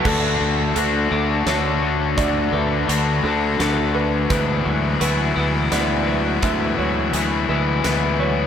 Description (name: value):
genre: post-rock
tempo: 85 BPM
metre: 3/4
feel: straight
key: D lydian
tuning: A4 = 440 Hz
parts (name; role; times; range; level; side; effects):
- phased analog pad; sustained chords; 0.0-8.5 s; D4 to B5; -30 LUFS; right 4 dB; phaser, chorus
- felt-muted upright piano; arpeggios; 0.0-8.5 s; A4 to E5; -28 LUFS; right 6 dB; analog delay
- twelve-string electric guitar; arpeggios; 0.0-8.5 s; D3 to E4; -27 LUFS; left 1 dB; spring reverb, analog delay
- distorted electric guitar; riff; 0.0-8.5 s; D3 to F#4; -21 LUFS; left 7 dB; distortion
- growling fingered electric bass; bass; 0.1-8.5 s; D2; -23 LUFS; right 1 dB; overdrive
- huge arena drum kit; drums; 0.1-8.0 s; crash cymbal, hi-hat, kick drum, snare drum; -27 LUFS; right 2 dB; none
room: moderate concert hall reverb, RT60 2.3 s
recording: none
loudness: -17 LUFS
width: side -8 dB against mid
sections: 0.1-8.5 A section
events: none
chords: 0.1 D; 4.3 Eadd9/D